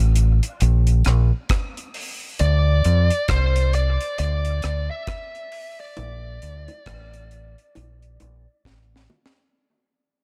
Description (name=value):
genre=dub reggae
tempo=67 BPM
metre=4/4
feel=swing 60% on 16ths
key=unclear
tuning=A4 = 439 Hz
part: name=deep dub fingered electric bass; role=bass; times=0.0-9.1 s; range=A1 to F2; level=-20 LUFS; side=equal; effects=none
part: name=deep reggae drum kit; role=drums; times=0.2-9.5 s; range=hi-hat, kick drum, rim click, snare drum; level=-29 LUFS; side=equal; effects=none
part: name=bongos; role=percussion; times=0.6-9.3 s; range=none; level=-53 LUFS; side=equal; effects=none
part: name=bluesy overdriven lead guitar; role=melody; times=2.4-8.6 s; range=C5 to E5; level=-30 LUFS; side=equal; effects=distortion, dub echo
room=studio reverb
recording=none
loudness=-20 LUFS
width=mono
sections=0.0-9.5 A section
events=break 0.0-2.4; fade-out 0.0-9.5; drum fill 8.7-9.5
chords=0.0 N.C.; 6.0 Bb